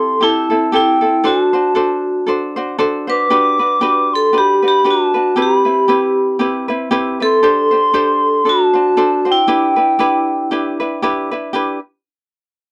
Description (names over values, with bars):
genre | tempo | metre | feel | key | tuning
Hawaiian | 116 BPM | 4/4 | swing 56% on 8ths | G major | A4 = 438 Hz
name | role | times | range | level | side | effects
hollow clarinet-like synth lead | melody | 0.0-11.1 s | G5 to D6 | -18 LUFS | equal | chorus
vibraphone with hard mallets | second line | 0.0-11.1 s | E4 to B4 | -18 LUFS | equal | none
ukulele | accompaniment | 0.0-11.8 s | C4 to C5 | -21 LUFS | equal | none
room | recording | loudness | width
moderate booth ambience, RT60 0.2 s | dry, close 1970s-style studio recording | -15 LUFS | mono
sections
0.0-11.6 A section; 11.6-12.7 B section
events
none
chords
0.0 Am7; 1.2 D7; 3.3 Gmaj7/D; 5.4 Cmaj7; 7.4 D7sus4; 8.5 D7; 9.5 G6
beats
0.22 0.73 | 1.25 1.76 2.28 2.79 | 3.31 3.82 4.34 4.86 | 5.37 5.89 6.40 6.92 | 7.43 7.95 8.46 8.98 | 9.50 10.01 10.53 11.05 | 11.56